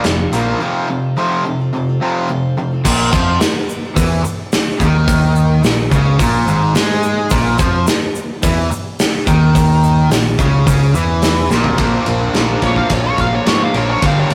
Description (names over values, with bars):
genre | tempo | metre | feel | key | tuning
classic rock | 107 BPM | 4/4 | straight | Bb mixolydian | A4 = 440 Hz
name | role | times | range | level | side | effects
clean lap steel guitar | second line | 0.0-1.1 s | D5 | -35 LUFS | equal | none
picked steel-string acoustic guitar | accompaniment | 0.0-2.9, 11.8-14.3 s | G2 to Bb4 | -30 LUFS | equal | none
distorted electric guitar | riff | 0.0-14.3 s | F2 to D4 | -21 LUFS | equal | overdrive
raw garage guitar | riff | 0.0-14.3 s | F2 to Bb3 | -23 LUFS | equal | overdrive
picked electric bass | bass | 0.0-14.3 s | F1 to Ab2 | -18 LUFS | equal | none
big rock drum kit | drums | 0.0-14.3 s | crash cymbal, hi-hat, kick drum, ride cymbal, snare drum, toms | -20 LUFS | equal | none
egg shaker | percussion | 2.9-11.6 s | none | -34 LUFS | equal | none
fuzz lead guitar | melody | 12.6-14.3 s | Db5 to F5 | -20 LUFS | equal | wah, distortion
room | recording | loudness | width
moderate stone room reverb, RT60 1.4 s | rough rehearsal-room recording, warm saturation | -15 LUFS | mono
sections
0.0-2.8 A section; 2.8-11.8 B section; 11.8-14.3 C section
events
break 0.6-2.8; drum fill 11.5; lead electric guitar solo 11.8-14.3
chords
0.0 Bbadd9; 0.6 F; 2.8 Bb5; 11.8 Bbadd9